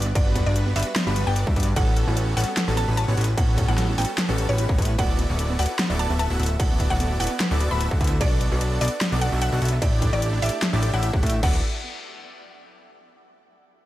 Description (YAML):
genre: future bass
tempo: 149 BPM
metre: 4/4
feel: swing 54% on 16ths, half-time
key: D major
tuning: A4 = 442 Hz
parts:
  - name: mallet-like synth pluck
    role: melody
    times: 0.0-11.6 s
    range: C#5 to B5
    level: -31 LUFS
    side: equal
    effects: chorus, sidechain pumping, digital delay
  - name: airy dreamy lead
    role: arpeggios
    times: 0.0-11.6 s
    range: A4 to F#5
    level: -37 LUFS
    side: equal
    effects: chorus, sidechain pumping, tape echo
  - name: supersaw chords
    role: riff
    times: 0.0-11.6 s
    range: G3 to F#5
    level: -29 LUFS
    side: equal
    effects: sidechain pumping
  - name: fat analog bass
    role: bass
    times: 0.0-11.6 s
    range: D1 to A2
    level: -23 LUFS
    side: equal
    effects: sidechain pumping
  - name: dubstep drum kit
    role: drums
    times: 0.0-11.5 s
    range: crash cymbal, hi-hat, snare drum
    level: -29 LUFS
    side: equal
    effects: none
  - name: wide unison pluck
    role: arpeggios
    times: 0.1-11.6 s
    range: B3 to E5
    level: -37 LUFS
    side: right 3 dB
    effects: none
  - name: electronic kick drum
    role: drums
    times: 0.2-11.5 s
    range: none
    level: -23 LUFS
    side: equal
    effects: distortion
room: digital ambience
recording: none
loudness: -20 LUFS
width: side -15 dB against mid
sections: 0.0-11.4 A section; 11.4-13.0 B section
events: drop 0.0-11.4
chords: 0.0 Gmaj7; 1.8 A13; 5.0 D69; 8.2 Bm7; 9.8 A7sus4; 11.4 D69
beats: | 0.15 0.56 0.96 1.36 | 1.76 2.17 2.57 2.97 | 3.38 3.78 4.18 4.58 | 4.99 5.39 5.79 6.20 | 6.60 7.00 7.40 7.80 | 8.21 8.61 9.01 9.42 | 9.82 10.22 10.62 11.03 | 11.43